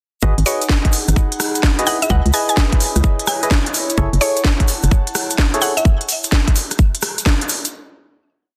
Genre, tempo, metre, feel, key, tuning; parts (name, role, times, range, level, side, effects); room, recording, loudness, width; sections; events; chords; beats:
UK garage, two-step garage; 128 BPM; 4/4; swing 66% on 16ths; F# dorian; A4 = 440 Hz
percussive organ stab; stabs; 0.2-5.7 s; E4 to D#5; -26 LUFS; equal; chorus, digital delay
organ-like FM bass; bass; 0.2-4.9 s; F#1 to C#2; -17 LUFS; equal
electronic kick drum; drums; 0.2-7.4 s; -17 LUFS; equal
egg shaker; percussion; 0.2-7.7 s; -29 LUFS; equal
airy breathy pad; texture; 0.5-5.9 s; D#4 to B5; -30 LUFS; equal; chorus, sidechain pumping
garage drum kit; drums; 0.4-7.7 s; hi-hat, rim click, snare drum; -22 LUFS; equal
mallet-like synth pluck; melody; 0.5-5.8 s; C#5 to G#5; -24 LUFS; equal; chorus, digital delay
light reverb; dense, heavily limited modern master; -16 LUFS; mono
0.2-7.7 drop
drop 0.2-7.7
0.2 G#m7; 1.9 C#m9; 3.7 F#m7
| 0.23 0.69 1.16 1.63 | 2.10 2.57 3.04 3.51 | 3.98 4.45 4.91 5.38 | 5.85 6.32 6.79 7.26